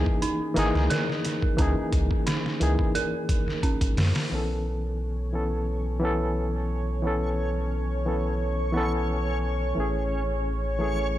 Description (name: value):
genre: trip hop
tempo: 88 BPM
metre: 4/4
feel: straight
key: unclear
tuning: A4 = 439 Hz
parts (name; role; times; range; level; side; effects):
- barky reed electric piano; accompaniment; 0.0-11.2 s; E3 to A4; -28 LUFS; left 1 dB; overdrive, fast tremolo, harmonic tremolo, vintage 12-bit sampler grit, low-pass filter, tape echo
- dark detuned synth bell; arpeggios; 0.0-4.3 s; C#4 to A#4; -32 LUFS; right 4 dB; chorus, tape echo
- soft dub sub bass; bass; 0.0-11.2 s; G#1 to F#2; -27 LUFS; equal; none
- trip hop sampler-style drum kit; drums; 0.1-4.3 s; hi-hat, kick drum, snare drum; -26 LUFS; equal; overdrive
- deep dark ambient pad; sustained chords; 5.7-11.2 s; C#5; -34 LUFS; right 2 dB; chorus, built-in reverb, vintage 12-bit sampler grit
- backwards swelling texture; texture; 5.2-11.2 s; C#4 to C#5; -37 LUFS; equal; built-in reverb
room: digital ambience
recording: none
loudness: -24 LUFS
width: side -13 dB against mid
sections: 0.0-4.3 A section; 4.3-11.2 B section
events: filter sweep on reed electric piano 0.0-4.3, 4.3-11.2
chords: 0.0 F#13 (rootless); 4.3 B9sus4; 9.8 Amaj7